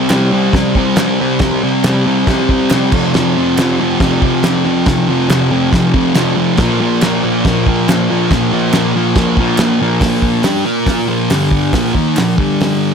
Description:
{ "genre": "garage rock duo or trio", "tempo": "139 BPM", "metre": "4/4", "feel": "straight", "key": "unclear", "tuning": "A4 = 440 Hz", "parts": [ { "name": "thick fuzz guitar", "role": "riff", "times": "0.0-12.9 s", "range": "F2 to Bb4", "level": "-12 LUFS", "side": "equal", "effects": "distortion" }, { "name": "cloth-damped thuddy drum kit", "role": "drums", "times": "0.1-12.7 s", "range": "crash cymbal, hi-hat, kick drum, snare drum", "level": "-17 LUFS", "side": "equal", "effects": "none" }, { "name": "group handclap", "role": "percussion", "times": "0.1-12.3 s", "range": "none", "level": "-27 LUFS", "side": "right 4 dB", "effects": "none" } ], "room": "light reverb", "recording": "none", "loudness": "-11 LUFS", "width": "side -6 dB against mid", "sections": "0.0-10.0 A section; 10.0-12.9 B section", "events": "none", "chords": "0.0 C5; 2.9 F5; 6.6 Bb5; 11.3 G5; 11.7 Bb5; 12.4 G5", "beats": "0.10 0.54 0.97 | 1.41 1.84 2.28 2.71 | 3.15 3.58 4.01 4.44 | 4.87 5.30 5.73 6.16 | 6.59 7.02 7.45 7.88 | 8.30 8.73 9.16 9.59 | 10.02 10.45 10.87 11.30 | 11.73 12.17 12.60" }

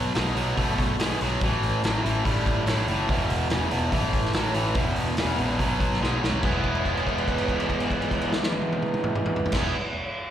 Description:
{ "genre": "blues rock power trio and southern rock", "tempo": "143 BPM", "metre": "4/4", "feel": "straight", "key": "E major", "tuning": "A4 = 440 Hz", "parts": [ { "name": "overdriven electric guitar", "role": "riff", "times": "0.0-9.7 s", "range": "E2 to E4", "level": "-25 LUFS", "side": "equal", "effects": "spring reverb" }, { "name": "vintage muted picked electric bass", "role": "bass", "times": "0.0-9.7 s", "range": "E1 to B1", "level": "-30 LUFS", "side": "equal", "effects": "none" }, { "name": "vintage drum kit", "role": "drums", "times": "0.2-9.6 s", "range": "crash cymbal, hi-hat, kick drum, snare drum, toms", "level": "-28 LUFS", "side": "equal", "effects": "none" } ], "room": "light reverb", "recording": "live gig heard through the venue's PA, recital hall reverb", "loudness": "-22 LUFS", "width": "side -10 dB against mid", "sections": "0.0-6.4 A section; 6.4-9.8 B section", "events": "drum fill 6.0-6.4; held note 6.4-9.5", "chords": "0.0 B5; 1.4 A5; 3.1 E5; 3.9 A5; 4.8 E5; 5.6 B5; 6.4 E", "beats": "0.16 0.58 1.00 | 1.42 1.83 2.25 2.67 | 3.09 3.51 3.93 4.35 | 4.77 5.19 5.61 6.03 | 6.45 6.87 7.28 7.70 | 8.12 8.54 8.95 9.37" }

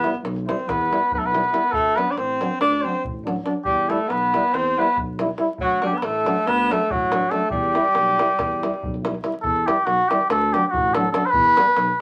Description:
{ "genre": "balkan folk, Balkan brass band", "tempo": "281 BPM (eighths)", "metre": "9/8", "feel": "straight", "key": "E minor", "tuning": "A4 = 436 Hz", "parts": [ { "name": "cornet with cup mute", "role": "melody", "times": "0.0-12.0 s", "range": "F#4 to D5", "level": "-22 LUFS", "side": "equal", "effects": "none" }, { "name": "bright alto saxophone", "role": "second line", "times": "0.0-9.0 s", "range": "F#3 to D4", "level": "-28 LUFS", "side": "equal", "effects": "none" }, { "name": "clear trombone", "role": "accompaniment", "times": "0.0-11.7 s", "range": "B3 to E4", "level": "-30 LUFS", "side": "equal", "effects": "none" }, { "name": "warm euphonium", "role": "accompaniment", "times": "0.0-11.6 s", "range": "F#3 to G3", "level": "-33 LUFS", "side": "equal", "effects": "none" }, { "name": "mellow tuba", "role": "bass", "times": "0.0-11.9 s", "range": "A1 to E2", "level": "-33 LUFS", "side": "equal", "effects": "none" }, { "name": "davul", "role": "percussion", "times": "0.0-11.9 s", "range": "none", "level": "-32 LUFS", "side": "equal", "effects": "none" } ], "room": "wet small room reverb, RT60 0.5 s", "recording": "vinyl crackle", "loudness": "-21 LUFS", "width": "mono", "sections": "0.0-9.4 A section; 9.4-12.0 B section", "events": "none", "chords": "0.0 Em; 1.7 D; 3.7 Em; 5.6 D; 7.5 Em; 10.3 D; 11.3 Em", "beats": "0.01 0.23 0.44 0.66 0.87 1.09 1.30 1.52 | 1.73 1.95 2.16 2.37 2.59 2.80 3.02 3.23 3.44 | 3.66 3.87 4.09 4.30 4.51 4.73 4.94 5.16 5.37 | 5.58 5.80 6.01 6.22 6.44 6.65 6.87 7.08 7.29 | 7.51 7.72 7.93 8.15 8.36 8.57 8.79 9.00 9.21 | 9.43 9.64 9.85 10.06 10.28 10.49 10.70 10.91 11.12 | 11.34 11.55 11.76 11.97" }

